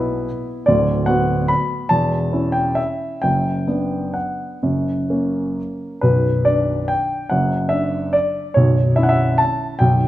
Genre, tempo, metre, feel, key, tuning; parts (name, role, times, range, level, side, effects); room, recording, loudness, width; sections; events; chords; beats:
classical, piano waltz; 123-158 BPM; 3/4; rubato; B minor; A4 = 440 Hz
warm grand piano; solo; 0.0-10.1 s; B0 to B5; -16 LUFS; equal
moderate recital hall reverb, RT60 1.6 s; -16 LUFS; side -14 dB against mid
0.0-10.1 A section
0.0 E5; 0.7 Bm/D; 1.9 A7/E; 3.2 Bm/F#; 4.6 F#; 6.0 Bm; 8.6 C#m7b5/B
0.27 | 0.67 1.07 1.50 | 1.91 2.32 2.77 | 3.23 3.68 4.15 | 4.63 5.10 5.58 | 6.03 6.46 6.89 | 7.30 7.70 8.13 | 8.56 8.97 9.39 | 9.80